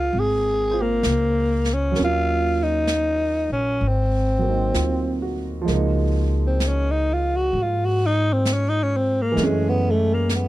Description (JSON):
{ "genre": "jazz ballad", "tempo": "65 BPM", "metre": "4/4", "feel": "swing 66% on 8ths", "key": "Db major", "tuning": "A4 = 440 Hz", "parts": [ { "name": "growling tenor saxophone", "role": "melody", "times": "0.0-10.5 s", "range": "Ab3 to Ab4", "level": "-22 LUFS", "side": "equal", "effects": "none" }, { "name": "warm grand piano", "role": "accompaniment", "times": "0.0-10.5 s", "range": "Fb3 to C5", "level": "-27 LUFS", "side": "right 4 dB", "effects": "none" }, { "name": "upright bass", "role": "bass", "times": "0.0-10.5 s", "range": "Ab1 to Ab2", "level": "-23 LUFS", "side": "equal", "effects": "none" }, { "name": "jazz brush drum kit", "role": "drums", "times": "0.1-10.5 s", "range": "brushed snare drum, hi-hat, snare drum", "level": "-31 LUFS", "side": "right 1 dB", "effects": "none" } ], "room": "small room ambience", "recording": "dry, close 1970s-style studio recording", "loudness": "-19 LUFS", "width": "side -16 dB against mid", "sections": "0.0-5.7 A section; 5.7-10.5 B section", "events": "tenor saxophone solo 5.7-10.5", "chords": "0.0 Db6; 2.0 Ebm7; 3.8 Ab9; 5.7 Db6; 9.4 Gbm7" }